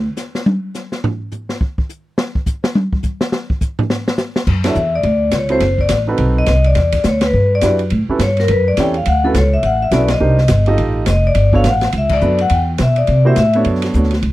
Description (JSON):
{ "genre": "jazz, small-group swing and bop", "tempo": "209 BPM", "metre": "4/4", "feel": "swing 60% on 8ths", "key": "unclear", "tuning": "A4 = 440 Hz", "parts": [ { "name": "upright bass", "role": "bass", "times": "0.0-0.1, 4.5-14.3 s", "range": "F1 to C3", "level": "-15 LUFS", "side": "equal", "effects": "none" }, { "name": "open jazz drum kit", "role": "drums", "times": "0.2-14.3 s", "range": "crash cymbal, hi-hat, kick drum, ride cymbal, snare drum, toms", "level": "-19 LUFS", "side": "equal", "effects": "none" }, { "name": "vibraphone with medium hard mallets", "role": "melody", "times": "4.7-13.5 s", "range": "A4 to G5", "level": "-17 LUFS", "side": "left 2 dB", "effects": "none" }, { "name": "warm grand piano", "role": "accompaniment", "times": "4.7-14.1 s", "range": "Bb3 to Eb5", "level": "-19 LUFS", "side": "right 4 dB", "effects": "none" } ], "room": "little or no reverb", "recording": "dry, close 1970s-style studio recording", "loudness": "-13 LUFS", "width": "side -16 dB against mid", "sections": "0.0-4.5 A section; 4.5-13.7 B section", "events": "drum solo 0.0-4.5; band accent 4.6, 7.2, 10.1, 12.1", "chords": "0.0 N.C.; 4.5 Dmaj7; 5.6 F#dim; 6.2 B7b9; 6.8 Em9; 7.9 A7; 9.1 Dmaj13; 10.2 Cm7; 10.8 F9; 11.4 Gmaj9#11; 12.5 Em; 13.1 C7#11; 13.7 Bm9" }